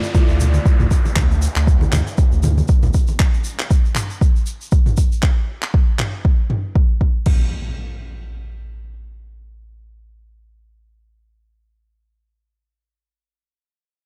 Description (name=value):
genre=afro house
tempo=118 BPM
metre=4/4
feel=swing 57% on 16ths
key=D minor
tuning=A4 = 440 Hz
part: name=egg shaker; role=percussion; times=0.0-5.2 s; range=none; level=-37 LUFS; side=equal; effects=none
part: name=downlifter and impact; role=sound effects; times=0.0-3.2, 7.3-12.2 s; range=none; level=-34 LUFS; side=equal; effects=none
part: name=mellow synth brass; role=stabs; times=0.1-1.1 s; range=A3 to D5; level=-29 LUFS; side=equal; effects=chorus, sidechain pumping, delay
part: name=electronic kick drum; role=drums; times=0.1-7.4 s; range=none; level=-17 LUFS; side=equal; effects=overdrive
part: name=congas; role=percussion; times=0.1-3.2 s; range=none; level=-27 LUFS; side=equal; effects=none
part: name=warm sub bass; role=bass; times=0.3-2.9 s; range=D2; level=-20 LUFS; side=equal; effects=sidechain pumping
part: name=deep house drum kit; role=drums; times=0.8-7.4 s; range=crash cymbal, handclaps, toms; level=-27 LUFS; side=equal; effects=overdrive
room=little or no reverb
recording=dark, warm production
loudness=-17 LUFS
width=mono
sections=0.0-7.3 A section; 7.3-11.3 B section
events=none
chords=0.0 Dmadd9; 3.2 N.C.